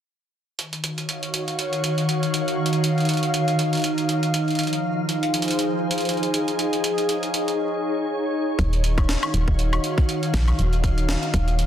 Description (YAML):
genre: IDM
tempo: 120 BPM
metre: 4/4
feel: swing 56% on 16ths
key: Eb dorian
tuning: A4 = 439 Hz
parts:
  - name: glassy FM pad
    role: sustained chords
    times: 0.7-11.7 s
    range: Eb3 to F5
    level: -22 LUFS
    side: equal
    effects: ensemble chorus, built-in reverb
  - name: jungle sampler-style drum kit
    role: drums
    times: 0.6-11.7 s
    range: hi-hat, snare drum, woodblock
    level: -28 LUFS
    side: right 1 dB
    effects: none
  - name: woody FM bass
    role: bass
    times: 8.6-11.7 s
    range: Eb1 to Bb1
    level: -21 LUFS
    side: equal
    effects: none
  - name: electronic kick drum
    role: drums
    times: 8.6-11.4 s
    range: none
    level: -21 LUFS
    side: equal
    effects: none
room: moderate digital room reverb, RT60 1.0 s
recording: dense, heavily limited modern master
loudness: -20 LUFS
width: side -10 dB against mid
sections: 0.6-8.6 A section; 8.6-11.7 B section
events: none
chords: 0.6 Ebm7; 4.6 Fm7; 6.6 Absus4; 8.6 Ebm7